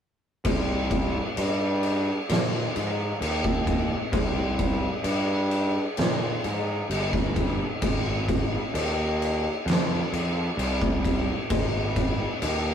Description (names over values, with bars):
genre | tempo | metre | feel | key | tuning
stoner and doom metal | 65 BPM | 4/4 | straight | C minor | A4 = 437 Hz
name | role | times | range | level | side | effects
fuzz picked electric bass | bass | 0.4-12.7 s | G1 to Bb2 | -27 LUFS | right 1 dB | overdrive
oversized low-tuned drum kit | drums | 0.4-12.6 s | crash cymbal, kick drum, snare drum | -26 LUFS | equal | none
room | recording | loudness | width
light reverb | rough rehearsal-room recording | -23 LUFS | side -8 dB against mid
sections
0.4-12.7 A section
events
none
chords
none